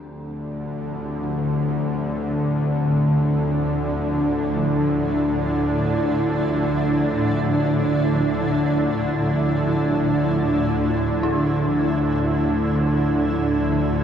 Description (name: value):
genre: dark ambient drone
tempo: free time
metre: none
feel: none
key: D minor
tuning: A4 = 440 Hz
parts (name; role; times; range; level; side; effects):
- granular cloud pad; sustained chords; 0.3-14.0 s; A2 to G4; -24 LUFS; right 1 dB; built-in reverb
- dark detuned synth bell; arpeggios; 0.0-14.0 s; D4 to E4; -33 LUFS; left 1 dB; none
- bowed-like drone; drone; 0.2-14.0 s; D2 to D3; -21 LUFS; equal; built-in reverb
room: wet huge ambient reverb, RT60 8.2 s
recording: none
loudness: -19 LUFS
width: side -8 dB against mid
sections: 0.0-14.0 A section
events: none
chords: 0.0 Dmadd9